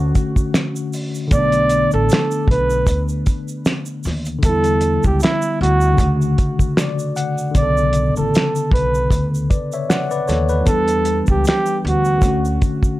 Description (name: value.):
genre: lo-fi hip hop.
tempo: 77 BPM.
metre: 4/4.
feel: swing 55% on 16ths.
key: B minor.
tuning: A4 = 440 Hz.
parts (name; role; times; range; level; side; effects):
tine electric piano; accompaniment; 0.0-13.0 s; C#3 to F#5; -21 LUFS; left 2 dB; medium stereo tremolo.
upright bass; bass; 0.0-12.6 s; A1 to E2; -20 LUFS; equal; none.
cloth-damped thuddy drum kit; drums; 0.2-13.0 s; finger snaps, hi-hat, kick drum, snare drum; -17 LUFS; equal; vintage 12-bit sampler grit.
tube shaker; percussion; 0.2-13.0 s; none; -38 LUFS; right 5 dB; none.
breathy flugelhorn; melody; 1.3-12.4 s; E4 to D5; -19 LUFS; right 2 dB; tape echo, plate reverb.
room: light reverb.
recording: cassette tape.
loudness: -15 LUFS.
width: side -17 dB against mid.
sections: 0.0-13.0 A section.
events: none.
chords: 0.0 Dmaj7; 1.3 Bm7; 4.4 Em7; 6.0 Dmaj7; 7.5 Bm9; 10.7 Em7; 12.2 Dmaj7.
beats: 0.54 | 1.31 2.09 2.87 3.65 | 4.43 5.21 5.99 6.77 | 7.55 8.33 9.11 9.89 | 10.66 11.44 12.22.